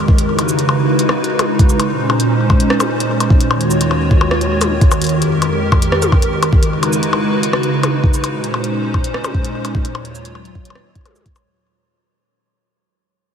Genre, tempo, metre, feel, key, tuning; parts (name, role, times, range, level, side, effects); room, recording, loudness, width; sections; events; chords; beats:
IDM; 149 BPM; 4/4; straight; A4 = 439 Hz
hollow soft pad; sustained chords; 0.0-11.5 s; Eb2 to Db5; -16 LUFS; equal; ensemble chorus, vintage 12-bit sampler grit
electronic kick drum; drums; 0.1-11.3 s; -13 LUFS; equal
glitchy drum kit; drums; 0.2-11.4 s; cabasa, hi-hat, percussion blips, rim click, toms; -20 LUFS; left 2 dB; ping-pong delay
wet huge ambient reverb, RT60 8.3 s; dreamy mix soaked in reverb; -13 LUFS; side -8 dB against mid
0.0-11.6 A section
fade-out 7.3-11.6
0.3 Dbm11; 1.9 Bbm11; 3.5 Ebm11; 5.1 Fm11; 6.7 Dbm11; 8.3 Bbm11; 9.9 Ebm11
| 0.28 0.69 1.09 1.49 | 1.90 2.30 2.70 3.10 | 3.51 3.91 4.31 4.71 | 5.12 5.52 5.92 6.33 | 6.73 7.13 7.53 7.94 | 8.34 8.74 9.14 9.55 | 9.95 10.35 10.75 11.16